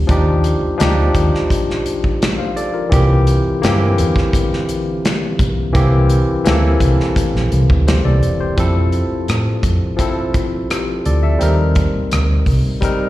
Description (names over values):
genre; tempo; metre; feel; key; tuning
lush 1970s-style soul; 85 BPM; 4/4; straight; F major; A4 = 440 Hz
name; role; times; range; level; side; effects
barky tine electric piano; accompaniment; 0.0-13.1 s; D3 to F5; -18 LUFS; left 1 dB; overdrive, slow stereo tremolo, slapback echo
vintage muted fingered electric bass; bass; 0.0-12.6 s; E1 to A2; -15 LUFS; equal; none
modern studio drum kit; drums; 0.1-13.0 s; hi-hat, kick drum, rim click, snare drum; -19 LUFS; equal; none
room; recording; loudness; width
light reverb; live gig heard through the venue's PA, recital hall reverb; -13 LUFS; side -16 dB against mid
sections
0.0-8.6 A section; 8.6-13.1 B section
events
none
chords
0.1 Ebmaj9; 2.9 C7; 8.6 Fmaj7; 11.4 Cm7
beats
| 0.09 0.80 1.51 2.21 | 2.92 3.63 4.34 5.04 | 5.75 6.46 7.17 7.87 | 8.58 9.29 9.99 10.70 | 11.41 12.12 12.82